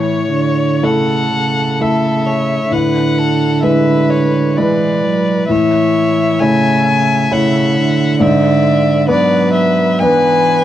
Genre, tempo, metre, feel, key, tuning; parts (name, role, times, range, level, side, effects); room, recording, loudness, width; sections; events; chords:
classical, slow romantic movement for piano quartet; 52-69 BPM; 3/4; rubato; A major; A4 = 440 Hz
rich violin; melody; 0.0-10.6 s; C#5 to G#5; -18 LUFS; left 4 dB
clear violin; second line; 0.0-10.6 s; A4 to E5; -19 LUFS; equal
warm cello; second line; 0.0-10.6 s; C#3 to F#3; -17 LUFS; right 5 dB
clear grand piano; accompaniment; 0.0-10.6 s; G#2 to C#5; -15 LUFS; left 1 dB
light reverb; worn, warbling old tape, cassette tape, warbly pitch drift; -11 LUFS; side -12 dB against mid
0.0-10.6 A section
0.0 A; 2.7 E7/A; 5.5 A; 8.2 E7/G#